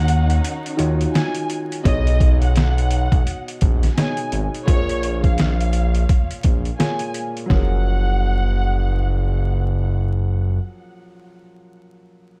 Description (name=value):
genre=hip hop, boom-bap hip-hop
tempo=85 BPM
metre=4/4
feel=swing 59% on 16ths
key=F# major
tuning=A4 = 439 Hz
part: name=warm studio violin section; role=melody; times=0.0-9.6 s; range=C#5 to G#5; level=-31 LUFS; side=equal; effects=high-pass filter, low-pass filter, tape echo
part: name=dark upright piano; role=accompaniment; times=0.0-12.4 s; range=A#2 to C#5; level=-31 LUFS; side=equal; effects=high-pass filter, low-pass filter
part: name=warm studio string section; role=sustained chords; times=0.0-1.8 s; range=D#3 to D#4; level=-35 LUFS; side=equal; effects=high-pass filter, low-pass filter
part: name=smooth synth bass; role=bass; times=0.0-10.6 s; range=F#1 to D#2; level=-21 LUFS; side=equal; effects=none
part: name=trip hop sampler-style drum kit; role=drums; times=0.1-7.7 s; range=hi-hat, kick drum, snare drum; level=-22 LUFS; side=equal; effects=overdrive
room=small room ambience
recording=dark, warm production, vinyl crackle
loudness=-19 LUFS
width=mono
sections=0.0-1.9 A section; 1.9-7.5 B section; 7.5-10.3 C section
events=break 0.4-1.9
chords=0.0 D#m9; 1.9 B6; 4.7 A#m7; 7.5 F#maj7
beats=0.44 1.15 | 1.85 2.56 3.27 3.97 | 4.68 5.38 6.09 6.79 | 7.50 8.21 8.91 9.62